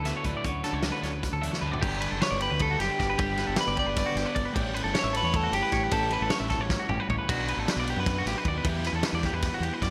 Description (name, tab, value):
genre	math rock and midwest emo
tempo	308 BPM (eighths)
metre	7/8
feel	straight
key	unclear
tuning	A4 = 440 Hz
part	clean electric guitar	accompaniment	0.0-3.2 s	D2 to F#4	-40 LUFS	equal	none
part	clean electric guitar	arpeggios	0.0-9.9 s	F#4 to E5	-34 LUFS	equal	none
part	crunchy overdriven guitar	riff	0.0-9.9 s	G2 to E4	-37 LUFS	equal	analog chorus
part	fingered electric bass	bass	0.0-9.9 s	F#1 to F#2	-35 LUFS	equal	none
part	loose indie drum kit	drums	0.0-9.9 s	crash cymbal, hi-hat, kick drum, ride cymbal, snare drum, toms	-33 LUFS	equal	none
part	electric guitar at the edge of break-up	melody	2.2-6.8 s	G4 to D5	-32 LUFS	equal	digital delay
room	moderate lush hall reverb, RT60 1.9 s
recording	bright 1980s-style digital production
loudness	-28 LUFS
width	mono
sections	0.0-1.8 A section; 1.8-9.9 B section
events	drum fill 1.5, 6.7-7.3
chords	0.4 Dmaj7; 1.8 Gmaj7; 4.6 A7; 7.3 Bm7; 8.6 Em7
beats	0.05 0.25 | 0.45 0.64 0.84 1.04 1.23 1.43 1.63 | 1.82 2.02 2.21 2.41 2.60 2.80 3.00 | 3.19 3.39 3.58 3.78 3.97 4.17 4.36 | 4.55 4.75 4.95 5.14 5.33 5.53 5.72 | 5.92 6.11 6.31 6.50 6.70 6.89 7.09 | 7.28 7.48 7.67 7.87 8.06 8.26 8.45 | 8.65 8.84 9.04 9.23 9.43 9.62 9.82